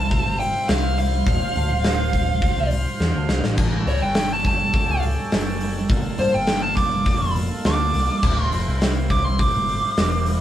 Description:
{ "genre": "blues rock power trio and southern rock", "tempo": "104 BPM", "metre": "4/4", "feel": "straight", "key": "D minor", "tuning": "A4 = 442 Hz", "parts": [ { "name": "bluesy overdriven lead guitar", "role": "melody", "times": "0.0-10.4 s", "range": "C5 to D6", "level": "-23 LUFS", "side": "equal", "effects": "distortion" }, { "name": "overdriven tonewheel organ", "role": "sustained chords", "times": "0.0-10.4 s", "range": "Bb3 to F5", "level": "-31 LUFS", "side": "right 1 dB", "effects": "slow rotary speaker" }, { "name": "picked electric bass", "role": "bass", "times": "0.0-10.4 s", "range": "D1 to G2", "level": "-23 LUFS", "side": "equal", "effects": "none" }, { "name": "big rock drum kit", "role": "drums", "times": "0.1-10.4 s", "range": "crash cymbal, hi-hat, kick drum, snare drum", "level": "-22 LUFS", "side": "equal", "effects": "none" } ], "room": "moderate studio reverb, RT60 0.8 s", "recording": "band playing live in one room", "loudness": "-18 LUFS", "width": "side -12 dB against mid", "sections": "0.0-10.4 A section", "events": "lead electric guitar solo 0.0-10.4; drum fill 3.0-3.6", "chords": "0.0 Dm9; 3.6 A7; 5.9 Gm9; 8.2 Dm9" }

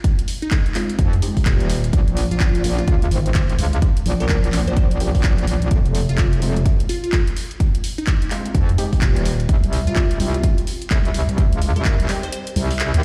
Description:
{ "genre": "bass house", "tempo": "127 BPM", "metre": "4/4", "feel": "swing 61% on 16ths", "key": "F minor", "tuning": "A4 = 440 Hz", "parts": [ { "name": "electronic kick drum", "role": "drums", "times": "0.0-12.0 s", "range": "none", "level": "-20 LUFS", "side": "equal", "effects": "none" }, { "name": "house drum kit", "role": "drums", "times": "0.0-13.0 s", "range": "handclaps, hi-hat", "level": "-31 LUFS", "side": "equal", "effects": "none" }, { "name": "glassy wavetable pluck", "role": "melody", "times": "0.4-12.4 s", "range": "Eb4 to C5", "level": "-32 LUFS", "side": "equal", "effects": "chorus, dub echo" }, { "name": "orchestra-hit-like synth stab", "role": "stabs", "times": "0.8-12.5 s", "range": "F3 to G4", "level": "-32 LUFS", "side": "equal", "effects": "built-in reverb, sidechain pumping, dub echo" }, { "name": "metallic wobble bass", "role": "bass", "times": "1.0-13.0 s", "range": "Eb1 to F2", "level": "-22 LUFS", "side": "equal", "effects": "chorus, tube saturation, sidechain pumping" } ], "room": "digital ambience", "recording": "played on a big sound system in a bare room, stone room reverb", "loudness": "-19 LUFS", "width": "mono", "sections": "0.0-13.0 A section", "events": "filter sweep on synth stab 0.0-13.0; kick drops out 12.3-13.0", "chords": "0.0 Fm7; 1.9 Bbm; 5.7 Fm7; 9.5 Cm" }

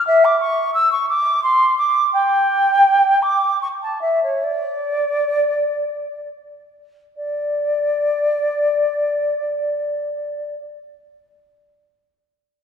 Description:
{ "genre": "classical, baroque-style fantasia for unaccompanied flute", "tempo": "61-88 BPM", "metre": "3/4", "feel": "rubato", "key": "unclear", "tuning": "A4 = 440 Hz", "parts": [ { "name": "mellow concert flute", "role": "solo", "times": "0.0-10.5 s", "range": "C#5 to E6", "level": "-16 LUFS", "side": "equal", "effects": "none" } ], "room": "wet concert hall reverb, RT60 2.3 s", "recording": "heard from further back in the room", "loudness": "-16 LUFS", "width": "side -7 dB against mid", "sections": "0.0-7.2 A section; 7.2-12.6 B section", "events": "slowing down 1.1-7.2", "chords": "none" }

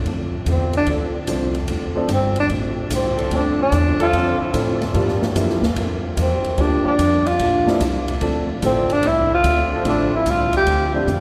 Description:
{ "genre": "jazz, big band swing", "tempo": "147 BPM", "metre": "4/4", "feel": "swing 67% on 8ths", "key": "D minor", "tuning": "A4 = 440 Hz", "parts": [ { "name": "upright bass", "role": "bass", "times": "0.0-11.2 s", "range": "F1 to A2", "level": "-25 LUFS", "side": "equal", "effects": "none" }, { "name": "vintage hollow-body jazz guitar", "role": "accompaniment", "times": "0.1-11.2 s", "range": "G2 to F4", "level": "-30 LUFS", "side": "equal", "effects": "none" }, { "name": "swinging big-band drum kit", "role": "drums", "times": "0.1-11.2 s", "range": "hi-hat, kick drum, ride cymbal, snare drum", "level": "-30 LUFS", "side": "equal", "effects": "none" }, { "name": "breathy tenor saxophone", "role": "melody", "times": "0.5-10.9 s", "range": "C4 to G4", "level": "-22 LUFS", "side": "equal", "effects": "none" }, { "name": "warm concert grand piano", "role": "accompaniment", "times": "0.9-11.1 s", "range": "F3 to C5", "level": "-28 LUFS", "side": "equal", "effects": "none" }, { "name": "bright trombone section", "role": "sustained chords", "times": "0.9-6.9, 9.7-10.2 s", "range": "F3 to A4", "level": "-33 LUFS", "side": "equal", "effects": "none" } ], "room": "wet cathedral reverb, RT60 7.2 s", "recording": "recorded in a church or concert hall", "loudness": "-19 LUFS", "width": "mono", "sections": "0.0-11.2 A section", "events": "tenor saxophone solo 0.0-11.2", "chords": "0.0 Dm7; 4.9 Gm7; 8.2 Dm7" }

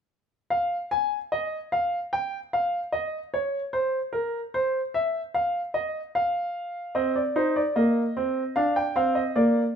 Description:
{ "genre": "classical, baroque-style 3-part fugue for grand piano", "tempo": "74 BPM", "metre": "4/4", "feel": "straight", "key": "unclear", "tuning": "A4 = 440 Hz", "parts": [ { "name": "warm grand piano", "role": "solo", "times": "0.5-9.6 s", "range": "Bb3 to Ab5", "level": "-24 LUFS", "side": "equal", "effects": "none" } ], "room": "moderate stone room reverb, RT60 1.0 s", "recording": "minimal, uncompressed stereo recording", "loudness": "-24 LUFS", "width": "side -7 dB against mid", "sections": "0.5-9.8 A section", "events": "none", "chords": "0.5 N.C.; 7.0 Cm; 8.6 Dm7" }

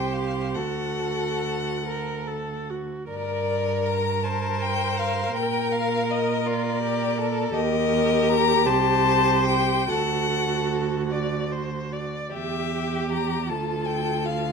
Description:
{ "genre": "classical, slow romantic movement for string quartet", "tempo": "45-56 BPM (dotted quarters)", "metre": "6/8", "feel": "rubato", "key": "G minor", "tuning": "A4 = 441 Hz", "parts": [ { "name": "rich violin", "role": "melody", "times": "0.0-14.5 s", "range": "D5 to Bb5", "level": "-26 LUFS", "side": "left 8 dB", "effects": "none" }, { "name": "clear violin", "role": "second line", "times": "0.0-14.5 s", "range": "F4 to D5", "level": "-28 LUFS", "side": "left 3 dB", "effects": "none" }, { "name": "clear viola", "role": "accompaniment", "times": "0.0-14.5 s", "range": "F4 to Bb4", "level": "-29 LUFS", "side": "right 5 dB", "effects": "none" }, { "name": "rich cello", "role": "bass", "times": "0.0-14.5 s", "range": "C2 to Bb2", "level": "-28 LUFS", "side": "right 6 dB", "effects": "none" } ], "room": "moderate stone room reverb, RT60 1.5 s", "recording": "none", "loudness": "-22 LUFS", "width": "side -5 dB against mid", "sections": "0.0-3.1 A section; 3.1-14.5 B section", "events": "none", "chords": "0.0 Fsus2/C; 0.6 D; 3.1 Gm; 5.4 Bb; 7.5 Eb; 8.7 Am7/C; 9.9 D; 12.3 Edim; 13.5 Dm" }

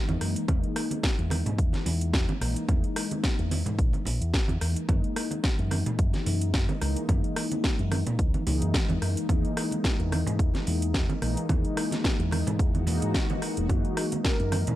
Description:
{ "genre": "nu-disco, nu disco", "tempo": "109 BPM", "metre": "4/4", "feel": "swing 55% on 16ths", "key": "unclear", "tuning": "A4 = 441 Hz", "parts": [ { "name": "mellow synth brass", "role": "accompaniment", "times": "0.0-14.8 s", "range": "E3 to D#4", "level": "-31 LUFS", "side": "left 1 dB", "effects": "chorus, analog delay" }, { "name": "fingered electric bass with an envelope filter", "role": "bass", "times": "0.1-14.8 s", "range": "E1 to A#2", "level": "-28 LUFS", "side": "equal", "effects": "none" }, { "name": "house drum kit", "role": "drums", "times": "0.1-14.8 s", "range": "hi-hat, rim click, snare drum", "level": "-32 LUFS", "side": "equal", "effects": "none" }, { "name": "congas", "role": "percussion", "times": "0.1-14.8 s", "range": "none", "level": "-34 LUFS", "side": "right 4 dB", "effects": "none" }, { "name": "electronic kick drum", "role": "drums", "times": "0.5-14.4 s", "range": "none", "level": "-26 LUFS", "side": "equal", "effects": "none" }, { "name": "swell", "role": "sound effects", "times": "12.8-13.7 s", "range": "none", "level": "-40 LUFS", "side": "left 3 dB", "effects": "none" }, { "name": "wide unison lead", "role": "melody", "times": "13.7-14.8 s", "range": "F#4 to A#4", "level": "-34 LUFS", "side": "equal", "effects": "none" } ], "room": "digital ambience", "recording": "none", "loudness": "-24 LUFS", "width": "side -14 dB against mid", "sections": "0.0-14.8 A section", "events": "filter sweep on analog polysynth 0.0-14.8; swell 12.8-13.7", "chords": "0.5 Emaj7#11; 4.9 F#13; 9.3 Emaj7#11; 13.7 F#13" }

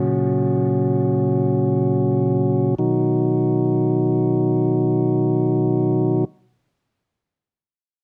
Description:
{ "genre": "pop", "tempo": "free time", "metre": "none", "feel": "none", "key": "B major", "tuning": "A4 = 440 Hz", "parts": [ { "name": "tonewheel organ", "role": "sustained chords", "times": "0.0-6.2 s", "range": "A#2 to F#4", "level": "-19 LUFS", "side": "equal", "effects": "stopped rotary speaker" } ], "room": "little or no reverb", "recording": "none", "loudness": "-19 LUFS", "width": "mono", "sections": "0.0-2.8 A section; 2.8-5.9 B section", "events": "slowing down 0.0-2.8", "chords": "0.0 F#; 2.8 B" }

